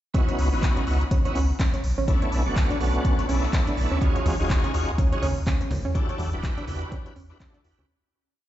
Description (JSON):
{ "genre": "deep house", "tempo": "124 BPM", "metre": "4/4", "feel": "swing 58% on 16ths", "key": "C# phrygian", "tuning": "A4 = 438 Hz", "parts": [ { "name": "analog pluck", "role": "arpeggios", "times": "0.1-7.8 s", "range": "C#4 to C#5", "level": "-32 LUFS", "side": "right 3 dB", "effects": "chorus, cassette tape, sidechain pumping, dub echo" }, { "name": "bright tonewheel organ", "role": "stabs", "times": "0.1-7.9 s", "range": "A3 to B4", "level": "-29 LUFS", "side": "equal", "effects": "overdrive, chorus vibrato, slow rotary speaker, sidechain pumping, dub echo" }, { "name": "deep house drum kit", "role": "drums", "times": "0.1-7.8 s", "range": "handclaps, hi-hat", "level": "-36 LUFS", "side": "equal", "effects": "small room ambience" }, { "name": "electronic kick drum", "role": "drums", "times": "0.1-7.5 s", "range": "none", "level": "-23 LUFS", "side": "equal", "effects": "small room ambience" }, { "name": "warm sub bass", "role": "bass", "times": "0.4-7.8 s", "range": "D#1 to E2", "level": "-25 LUFS", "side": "equal", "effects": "sidechain pumping" }, { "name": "congas", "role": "percussion", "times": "4.3-7.9 s", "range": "none", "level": "-32 LUFS", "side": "right 2 dB", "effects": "none" } ], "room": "digital ambience", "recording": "played on a big sound system in a bare room, large studio reverb, nothing above 7.8 kHz", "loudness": "-21 LUFS", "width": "side -13 dB against mid", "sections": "0.1-7.9 groove", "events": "fade-out 5.3-7.9", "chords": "0.1 C#m11; 1.8 Bm11; 4.0 D#m11; 6.0 Em11" }